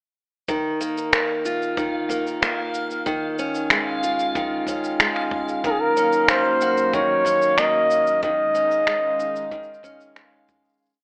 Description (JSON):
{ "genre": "folktronica", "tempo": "93 BPM", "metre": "4/4", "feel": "straight", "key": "Eb minor", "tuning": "A4 = 440 Hz", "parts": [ { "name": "picked steel-string acoustic guitar", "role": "arpeggios", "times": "0.5-11.0 s", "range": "Eb3 to Gb4", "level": "-28 LUFS", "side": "equal", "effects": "tape echo" }, { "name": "electronic shaker and finger snaps", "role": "drums", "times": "0.5-11.0 s", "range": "none", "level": "-25 LUFS", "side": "equal", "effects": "overdrive" }, { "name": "kick drum", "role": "drums", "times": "0.5-10.6 s", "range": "none", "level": "-37 LUFS", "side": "equal", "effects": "none" }, { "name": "backwards swelling texture", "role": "texture", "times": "1.5-10.8 s", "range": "F5", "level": "-34 LUFS", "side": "equal", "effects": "built-in reverb" }, { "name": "warm flugelhorn", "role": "melody", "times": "5.7-10.1 s", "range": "Ab4 to Eb5", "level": "-21 LUFS", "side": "equal", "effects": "none" }, { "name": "warm analog pad", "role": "sustained chords", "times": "5.7-10.8 s", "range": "Eb2 to F5", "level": "-35 LUFS", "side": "equal", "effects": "chorus" } ], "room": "moderate echo chamber reverb, RT60 2.6 s", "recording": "AM radio sound", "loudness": "-22 LUFS", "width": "mono", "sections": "0.5-10.8 groove", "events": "fade-out 7.4-10.8", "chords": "0.5 Ebsus2; 3.1 Eb9sus4; 5.6 Gbmaj7/Eb; 8.2 Absus4/Eb" }